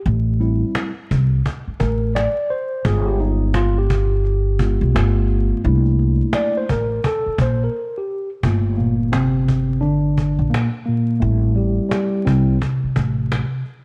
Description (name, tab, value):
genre	hip hop, jazz-hop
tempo	86 BPM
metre	4/4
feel	swing 62% on 16ths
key	G dorian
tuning	A4 = 440 Hz
part	upright bass	bass	0.1-13.4 s	G1 to C2	-21 LUFS	equal	none
part	cajon	drums	0.1-13.8 s	none	-27 LUFS	equal	none
part	mellow tine electric piano	accompaniment	0.4-13.6 s	A2 to D5	-22 LUFS	equal	none
room	light reverb, small room ambience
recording	dark, warm production, vinyl crackle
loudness	-19 LUFS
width	mono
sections	0.0-8.4 A section; 8.4-13.8 B section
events	tine electric piano solo 0.0-8.4, 8.4-13.8; break 7.7-8.4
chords	0.1 Am7; 2.9 G7b9; 4.9 G9; 5.6 C13; 8.4 Gm9; 11.2 Am7